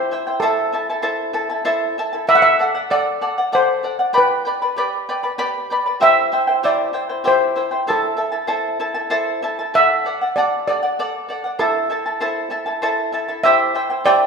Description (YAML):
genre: andean folk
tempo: 64 BPM (dotted quarters)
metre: 6/8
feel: straight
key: A minor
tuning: A4 = 440 Hz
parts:
  - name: steel pan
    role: melody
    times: 0.0-14.3 s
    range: A4 to F#5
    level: -17 LUFS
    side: equal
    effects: none
  - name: charango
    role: accompaniment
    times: 0.0-14.3 s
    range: E4 to B5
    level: -19 LUFS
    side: equal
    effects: none
room: wet recital hall reverb, RT60 1.4 s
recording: minimal, uncompressed stereo recording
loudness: -16 LUFS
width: side -5 dB against mid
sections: 0.0-13.4 A section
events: none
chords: 0.4 Am; 2.3 D; 4.2 G; 6.0 C; 7.9 Am; 9.7 D; 11.6 Am; 13.4 C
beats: | 0.41 1.35 | 2.28 3.22 | 4.15 5.08 | 6.02 6.95 | 7.88 8.81 | 9.74 10.66 | 11.59 12.52 | 13.44